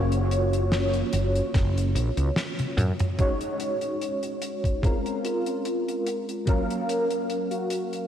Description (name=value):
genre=vaporwave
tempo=73 BPM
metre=4/4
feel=swing 54% on 16ths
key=Gb lydian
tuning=A4 = 440 Hz
part: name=mellow FM electric piano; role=accompaniment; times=0.0-8.1 s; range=Gb3 to F5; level=-27 LUFS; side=equal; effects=ensemble chorus, analog delay
part: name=woody fretless electric bass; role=bass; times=0.0-2.9 s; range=Gb1 to Gb2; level=-24 LUFS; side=equal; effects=none
part: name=damped 70s drum kit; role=drums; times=0.1-8.1 s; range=hi-hat, snare drum, toms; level=-31 LUFS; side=equal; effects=small room ambience
part: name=electronic kick drum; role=drums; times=1.5-6.7 s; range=none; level=-24 LUFS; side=equal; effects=small room ambience
part: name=warm velvety synth lead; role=melody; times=5.2-8.0 s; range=F4 to Gb4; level=-33 LUFS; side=equal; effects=chorus, tape echo
room=wet lush hall reverb, RT60 2.8 s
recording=dreamy mix soaked in reverb, cassette tape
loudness=-24 LUFS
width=side -9 dB against mid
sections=0.0-3.2 A section; 3.2-8.1 B section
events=drum fill 2.6-3.2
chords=0.0 Gbmaj7; 3.2 Ab7sus4; 4.8 Bbm9; 6.5 Gbmaj7